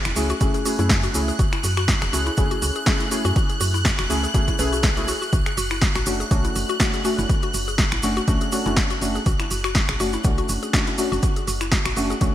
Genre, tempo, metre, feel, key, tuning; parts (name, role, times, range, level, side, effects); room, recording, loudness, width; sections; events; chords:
deep house; 122 BPM; 4/4; swing 55% on 16ths; A4 = 440 Hz
deep mellow chord stab; stabs; 0.0-12.3 s; A3 to G#4; -26 LUFS; left 1 dB; chorus, sidechain pumping, ping-pong delay
string machine, violins; texture; 0.0-12.3 s; F#6; -30 LUFS; equal; ensemble chorus, sidechain pumping
mallet-like synth pluck; arpeggios; 0.1-12.3 s; E4 to B4; -30 LUFS; left 2 dB; chorus, sidechain pumping, ping-pong delay
woody FM bass; bass; 0.1-12.3 s; E1 to F#2; -26 LUFS; equal; sidechain pumping
deep house drum kit; drums; 0.1-12.3 s; finger snaps, hi-hat, snare drum; -26 LUFS; equal; gated reverb
maracas; percussion; 0.1-12.3 s; -32 LUFS; right 2 dB
electronic kick drum; drums; 0.4-12.3 s; -22 LUFS; equal
light reverb; bright 1980s-style digital production, vinyl crackle; -19 LUFS; side -12 dB against mid
0.0-12.3 A section
0.0 F#m7; 5.3 Bm9 (rootless)